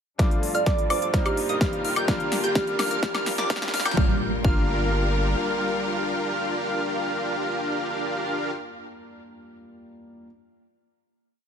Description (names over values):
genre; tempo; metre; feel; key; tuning
EDM, festival progressive house; 127 BPM; 4/4; straight; G minor; A4 = 440 Hz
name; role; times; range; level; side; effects
bright grand piano; accompaniment; 0.2-10.3 s; G2 to F4; -34 LUFS; left 2 dB; sidechain pumping, tape echo
bright studio string section; sustained chords; 0.2-8.5 s; G3 to Bb4; -34 LUFS; left 3 dB; sidechain pumping, low-pass filter
plucky unison lead; arpeggios; 0.2-8.5 s; D6 to G6; -31 LUFS; equal; sidechain pumping, tape echo
dense compressed supersaw; riff; 0.2-8.5 s; D4 to G5; -29 LUFS; equal; vintage 12-bit sampler grit, sidechain pumping, low-pass filter, tape echo
saturated sub bass; bass; 0.2-5.3 s; G1 to G2; -30 LUFS; equal; tube saturation, sidechain pumping, high-pass filter
big-room dance drum kit; drums; 0.2-4.0 s; hi-hat, snare drum, woodblock; -29 LUFS; left 1 dB; overdrive
electronic kick drum; drums; 0.2-4.6 s; none; -23 LUFS; equal; overdrive
riser and impact; sound effects; 2.2-8.6 s; none; -33 LUFS; right 1 dB; none
kalimba; melody; 0.5-2.6 s; G4 to D5; -29 LUFS; right 3 dB; tape echo
room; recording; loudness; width
light reverb; high-pass filter; -22 LUFS; side -7 dB against mid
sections
0.2-4.0 build; 4.0-7.8 final chord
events
build-up 0.2-4.0; drum fill 0.2-4.0; filter sweep on supersaw synth 0.2-4.0; filter sweep on digital synth lead 0.2-4.0; filter sweep on string section 0.2-4.0; filter sweep 0.2-4.0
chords
0.2 Dm/G; 1.1 Ebadd9/G; 2.1 Gm7